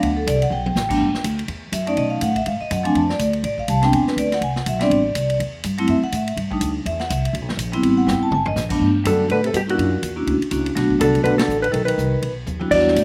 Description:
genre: jazz, small-group swing and bop.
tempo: 246 BPM.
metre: 4/4.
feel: swing 60% on 8ths.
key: G major.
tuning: A4 = 440 Hz.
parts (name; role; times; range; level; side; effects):
vibraphone with medium hard mallets; accompaniment; 0.0-12.9 s; F3 to A5; -22 LUFS; equal; none.
upright bass; bass; 0.0-13.0 s; G1 to B2; -26 LUFS; equal; none.
swinging big-band drum kit; drums; 0.0-13.0 s; crash cymbal, hi-hat, kick drum, ride cymbal, snare drum, toms; -31 LUFS; equal; none.
vintage hollow-body jazz guitar; melody; 9.1-13.0 s; F#4 to D5; -22 LUFS; equal; none.
mellow trombone; second line; 9.1-13.0 s; Bb2 to F#3; -27 LUFS; equal; none.
room: little or no reverb.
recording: recorded outdoors, with no room sound.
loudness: -20 LUFS.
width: mono.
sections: 0.0-1.0 A section; 1.0-8.8 A section; 8.8-13.0 B section.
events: drum fill 0.5, 8.1-8.6, 12.5; band accent 11.4.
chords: 0.0 Gmaj9; 1.0 G5; 2.0 B9; 3.0 Amadd11; 3.9 E7b13; 4.9 Am7; 5.9 F#m7; 6.4 Dsus4; 6.9 Em; 7.8 Am9; 8.3 Absus2; 8.8 Gmaj9; 9.8 F#7b13; 10.8 Bm7; 11.7 B.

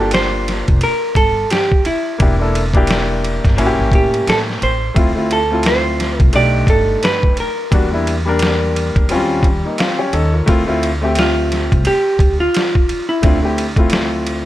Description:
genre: hip hop, jazz-hop.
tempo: 87 BPM.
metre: 4/4.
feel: swing 58% on 16ths.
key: D minor.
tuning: A4 = 440 Hz.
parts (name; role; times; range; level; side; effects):
hollow-body jazz guitar; melody; 0.0-14.5 s; D4 to D5; -18 LUFS; right 1 dB; none.
warm concert grand piano; accompaniment; 0.0-14.5 s; F#3 to F5; -18 LUFS; left 2 dB; none.
upright bass; bass; 0.0-14.4 s; E1 to A2; -20 LUFS; equal; none.
trip hop sampler-style drum kit; drums; 0.1-14.5 s; hi-hat, kick drum, ride cymbal, snare drum; -17 LUFS; equal; none.
room: little or no reverb.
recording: none.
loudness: -13 LUFS.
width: side -14 dB against mid.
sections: 0.0-14.5 A section.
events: grand piano fill 9.4-10.5.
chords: 0.0 Gm9; 2.2 Em7b5; 3.6 A7b9; 5.0 Dm9; 6.3 B7alt; 7.7 Em7b5; 9.1 Eb13; 10.5 Dm7.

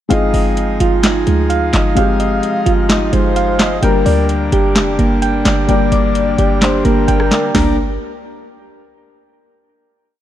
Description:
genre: hip hop, trap.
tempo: 129 BPM.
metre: 4/4.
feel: half-time.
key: G phrygian.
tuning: A4 = 441 Hz.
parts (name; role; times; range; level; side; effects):
breathy flute-like synth lead; second line; 0.1-7.8 s; Bb4 to F5; -22 LUFS; left 6 dB; chorus, tremolo, tape echo.
felt-muted upright piano; accompaniment; 0.1-7.8 s; G3 to Bb4; -20 LUFS; left 4 dB; none.
pipe organ, full organ; sustained chords; 0.1-7.8 s; D3 to D5; -23 LUFS; left 1 dB; none.
soft electric-piano-like synth keys; arpeggios; 0.1-7.8 s; Ab3 to G5; -18 LUFS; right 4 dB; chorus, tape echo.
short 808-style bass; bass; 0.1-8.0 s; F1 to D2; -16 LUFS; equal; none.
booming analog drum machine; drums; 0.1-7.7 s; handclaps, hi-hat, rim click, snare drum, toms; -17 LUFS; equal; none.
room: light reverb, digital ambience.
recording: dark, warm production.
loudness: -12 LUFS.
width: side -12 dB against mid.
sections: 0.1-7.5 hook; 7.5-9.4 final chord.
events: none.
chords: 0.1 Fm7/G; 3.8 Gm.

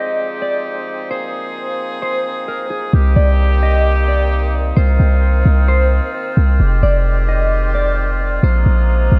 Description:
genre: hip hop.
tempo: 131 BPM.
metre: 4/4.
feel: half-time.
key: C minor.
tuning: A4 = 441 Hz.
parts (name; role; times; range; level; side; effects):
mellow electric guitar; melody; 0.0-9.2 s; Ab4 to Eb5; -25 LUFS; equal; phaser, low-pass filter, tape echo.
warm woodwind section; sustained chords; 0.0-9.2 s; C3 to Ab4; -24 LUFS; equal; low-pass filter.
clean 808-style bass; bass; 2.9-9.2 s; F1 to C2; -15 LUFS; equal; none.
room: light reverb, small room ambience.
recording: none.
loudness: -16 LUFS.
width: mono.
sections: 0.0-2.9 A section; 2.9-9.2 B section.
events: filter sweep 0.0-2.9.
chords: 0.0 Fm9; 1.1 Bb9sus4; 2.9 Cm7; 6.6 Fm9; 8.4 Bb9sus4.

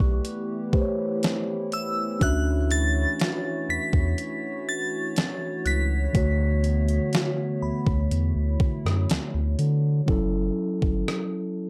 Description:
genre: contemporary R&B.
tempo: 61 BPM.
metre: 4/4.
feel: straight.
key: B minor.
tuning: A4 = 440 Hz.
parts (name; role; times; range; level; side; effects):
glassy synth bell; melody; 0.0-8.6 s; E6 to B6; -33 LUFS; equal; chorus, phaser, tape echo.
mellow tine electric piano; accompaniment; 0.0-11.7 s; D3 to E5; -31 LUFS; equal; none.
hollow soft pad; sustained chords; 0.0-10.1 s; E3 to C#5; -36 LUFS; equal; chorus, sidechain pumping.
warm sub bass; bass; 0.0-11.0 s; F#1 to D3; -26 LUFS; equal; tube saturation.
crisp 8-bit digital drum machine; drums; 0.0-11.3 s; hi-hat, kick drum, rim click, snare drum; -28 LUFS; equal; overdrive.
glassy synth bell; texture; 0.0-10.1 s; B5 to A6; -46 LUFS; equal; chorus, tape echo.
room: little or no reverb.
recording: dry, gritty hardware recording.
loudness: -25 LUFS.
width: mono.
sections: 0.0-10.1 A section; 10.1-11.7 B section.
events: none.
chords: 0.0 A9sus4; 2.2 Dmaj9; 6.1 Bm9/D; 10.1 F#m7.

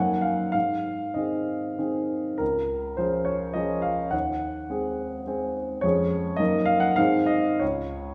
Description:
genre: classical, romantic character piece for solo piano.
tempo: 93-107 BPM.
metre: 3/4.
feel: rubato.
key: unclear.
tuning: A4 = 440 Hz.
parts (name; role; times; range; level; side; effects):
warm grand piano; solo; 0.0-8.1 s; Db2 to Gb5; -26 LUFS; equal; none.
room: wet recital hall reverb, RT60 1.5 s.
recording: heard from further back in the room.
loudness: -26 LUFS.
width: mono.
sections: 0.0-8.1 A section.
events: none.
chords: 0.0 Ebm/Gb; 0.5 Ab; 2.4 Db; 4.1 Ab7/Eb; 5.8 Db/F; 6.4 Ebm/Gb; 7.0 Ab; 7.6 N.C..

